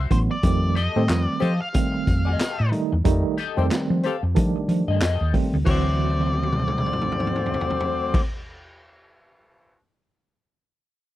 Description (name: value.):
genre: funk.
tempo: 92 BPM.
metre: 4/4.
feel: swing 60% on 16ths.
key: D mixolydian.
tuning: A4 = 441 Hz.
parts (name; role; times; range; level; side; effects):
electric guitar at the edge of break-up; accompaniment; 0.0-8.8 s; F#4 to F5; -31 LUFS; left 7 dB; wah, lush chorus.
hollow-body short-scale fingered electric bass; bass; 0.0-8.2 s; A1 to F3; -23 LUFS; equal; none.
octave-fuzz lead guitar; melody; 0.1-8.2 s; C5 to F5; -29 LUFS; left 1 dB; distortion.
tine electric piano; stabs; 0.1-8.2 s; Eb3 to Eb4; -26 LUFS; right 4 dB; medium stereo tremolo.
raw garage drum kit; drums; 0.1-9.7 s; crash cymbal, handclaps, hi-hat, kick drum, snare drum, toms; -25 LUFS; equal; none.
mellow horn section; second line; 1.0-8.2 s; A3 to C5; -28 LUFS; left 6 dB; none.
room: studio reverb.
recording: dry, close 1970s-style studio recording.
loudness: -20 LUFS.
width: side -14 dB against mid.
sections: 0.0-5.7 A section; 5.7-8.3 B section.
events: drum fill 6.0-8.1.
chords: 0.4 F9; 5.7 D9.